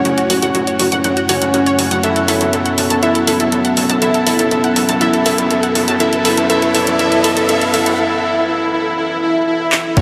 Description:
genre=melodic techno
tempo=121 BPM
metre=4/4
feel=straight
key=unclear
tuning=A4 = 441 Hz
part: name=soft supersaw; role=melody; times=0.0-10.0 s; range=C#4 to F#4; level=-21 LUFS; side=equal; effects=sidechain pumping, tape echo
part: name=glassy wavetable pluck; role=second line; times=0.0-10.0 s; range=C#5 to F#5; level=-25 LUFS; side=equal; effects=chorus, sidechain pumping, delay
part: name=dark analog pad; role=sustained chords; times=0.0-10.0 s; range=A3 to B4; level=-22 LUFS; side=equal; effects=chorus, vintage 12-bit sampler grit, sidechain pumping
part: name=analog drone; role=drone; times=0.0-10.0 s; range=F#2 to F#3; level=-30 LUFS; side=equal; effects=chorus, sidechain pumping
part: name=analog pluck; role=arpeggios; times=0.1-10.0 s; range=F#4 to A5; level=-21 LUFS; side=equal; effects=chorus, sidechain pumping, delay
part: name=gritty driven synth bass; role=bass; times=0.1-10.0 s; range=F#1 to F#2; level=-27 LUFS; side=equal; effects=sidechain pumping, high-pass filter
part: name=deep house drum kit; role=drums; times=0.1-10.0 s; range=crash cymbal, handclaps, hi-hat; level=-21 LUFS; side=equal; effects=none
part: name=riser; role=sound effects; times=4.7-8.0 s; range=none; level=-28 LUFS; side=equal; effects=none
part: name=electronic kick drum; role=drums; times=10.0 s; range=none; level=-12 LUFS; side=equal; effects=none
room=wet huge ambient reverb, RT60 8.7 s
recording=dreamy mix soaked in reverb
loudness=-15 LUFS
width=mono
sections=0.0-10.0 A section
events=build-up 0.0-10.0; filter sweep on supersaw synth 0.0-10.0; filter sweep on synth pluck 0.0-10.0; break 8.0-10.0; drum fill 9.7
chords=0.0 F#m; 2.0 Aadd9/F#

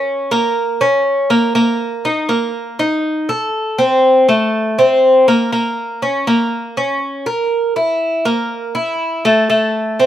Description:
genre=latin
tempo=121 BPM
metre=4/4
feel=straight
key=unclear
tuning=A4 = 439 Hz
part: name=Cuban tres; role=solo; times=0.0-10.1 s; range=A3 to Bb4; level=-13 LUFS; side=equal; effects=none
room=light reverb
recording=recorded outdoors, with no room sound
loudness=-13 LUFS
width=side -11 dB against mid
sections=0.0-10.1 A section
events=none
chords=none

